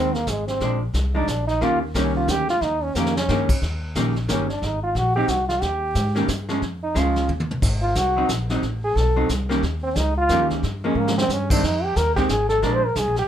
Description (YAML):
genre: jazz, small-group swing and bop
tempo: 180 BPM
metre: 3/4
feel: swing 62% on 8ths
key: Eb mixolydian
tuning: A4 = 440 Hz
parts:
  - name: clear trombone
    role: second line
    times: 0.0-13.3 s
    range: Ab3 to C5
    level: -22 LUFS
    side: right 1 dB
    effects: none
  - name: vintage hollow-body jazz guitar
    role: accompaniment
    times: 0.0-12.8 s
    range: Eb3 to G4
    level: -24 LUFS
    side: equal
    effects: none
  - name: upright bass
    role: bass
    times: 0.0-13.3 s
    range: G1 to Ab2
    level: -25 LUFS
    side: equal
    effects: none
  - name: vintage brush drum kit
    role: drums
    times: 0.1-13.3 s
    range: brushed snare drum, crash cymbal, hi-hat, kick drum, snare drum, toms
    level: -27 LUFS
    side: equal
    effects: none
room: light reverb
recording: minimal, uncompressed stereo recording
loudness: -19 LUFS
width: side -10 dB against mid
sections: 0.0-3.6 A section; 3.6-13.3 A section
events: trombone solo 0.0-13.3; drum fill 2.9-3.3, 7.3-7.6, 11.0-11.3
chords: 0.0 Fm7 (rootless); 0.6 Bb7; 1.6 Eb7; 4.6 Ab7; 5.6 Eb7; 6.6 Dbadd9; 7.3 N.C.; 7.6 Ab7; 8.6 Adim; 9.6 Eb7; 10.6 Gm7b5; 11.3 C5; 11.6 Fm7; 12.6 Bb7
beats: 0.27 | 0.60 0.94 1.27 | 1.61 1.94 2.27 | 2.61 2.94 3.28 | 3.61 3.95 4.28 | 4.62 4.95 5.28 | 5.62 5.95 6.29 | 6.62 6.96 7.29 | 7.62 7.96 8.29 | 8.62 8.96 9.29 | 9.62 9.96 10.29 | 10.63 10.96 11.29 | 11.63 11.96 12.29 | 12.63 12.96